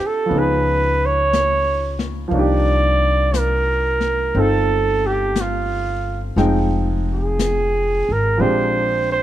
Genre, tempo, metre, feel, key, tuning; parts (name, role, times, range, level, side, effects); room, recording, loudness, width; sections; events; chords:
jazz ballad; 60 BPM; 4/4; swing 68% on 8ths; A4 = 439 Hz
clear flugelhorn; melody; 0.0-9.2 s; F4 to D5; -19 LUFS; right 2 dB
clear baby grand piano; accompaniment; 0.0-9.2 s; F3 to G5; -23 LUFS; equal
upright bass; bass; 0.0-9.2 s; F1 to C#2; -21 LUFS; left 1 dB
jazz brush drum kit; drums; 0.0-9.2 s; brushed snare drum, hi-hat, snare drum; -28 LUFS; left 5 dB
little or no reverb; -16 LUFS; side -12 dB against mid
0.0-9.2 A section
0.3 C#9; 2.3 Cm11; 6.4 Fm9; 8.4 Bb13